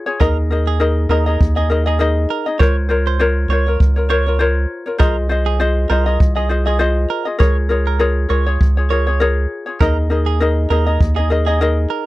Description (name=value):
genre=acoustic pop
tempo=100 BPM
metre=4/4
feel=swing 55% on 16ths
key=unclear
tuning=A4 = 440 Hz
part: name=ukulele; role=accompaniment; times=0.0-12.1 s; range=Eb4 to Eb5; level=-18 LUFS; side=left 3 dB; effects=none
part: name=direct-recorded clean electric guitar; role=arpeggios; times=0.2-12.1 s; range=Ab4 to Db5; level=-23 LUFS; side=right 11 dB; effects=none
part: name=round analog bass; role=bass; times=0.2-11.9 s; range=C2 to Eb2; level=-16 LUFS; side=equal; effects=none
part: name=kick drum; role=drums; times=0.2-11.2 s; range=none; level=-16 LUFS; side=equal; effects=none
room=little or no reverb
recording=dry, close 1970s-style studio recording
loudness=-14 LUFS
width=side -18 dB against mid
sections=0.0-12.1 A section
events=none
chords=0.2 Ebsus4; 2.6 Bbmadd9/Db; 5.0 Fm7/C; 7.4 Db6; 9.8 Ebsus4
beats=| 0.20 0.80 1.40 2.00 | 2.60 3.21 3.81 4.41 | 5.00 5.61 6.21 6.80 | 7.41 8.01 8.61 9.21 | 9.81 10.41 11.01 11.61